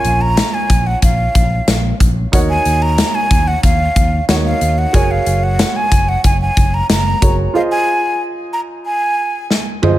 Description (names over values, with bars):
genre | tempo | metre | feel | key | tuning
1980s-style pop | 92 BPM | 4/4 | straight | Bb minor | A4 = 438 Hz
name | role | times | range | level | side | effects
breathy mellow silver concert flute | melody | 0.0-9.5 s | F5 to Bb5 | -18 LUFS | right 1 dB | tape echo
warm grand piano | accompaniment | 0.0-10.0 s | Db4 to Eb5 | -22 LUFS | right 3 dB | none
fingered electric bass | bass | 0.0-7.5 s | Gb1 to Eb2 | -17 LUFS | equal | none
big rock drum kit | drums | 0.0-10.0 s | hi-hat, kick drum, snare drum, toms | -15 LUFS | equal | none
room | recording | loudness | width
light reverb, small room ambience | none | -12 LUFS | side -14 dB against mid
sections
0.0-10.0 A section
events
break 7.5-10.0; drum fill 9.5-10.0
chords
0.0 Bbm; 2.3 Ebm7; 4.9 Gbadd9; 7.5 Fm7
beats
0.37 1.03 1.68 | 2.33 2.98 3.63 4.29 | 4.94 5.59 6.24 6.90 | 7.55 8.20 8.85 9.51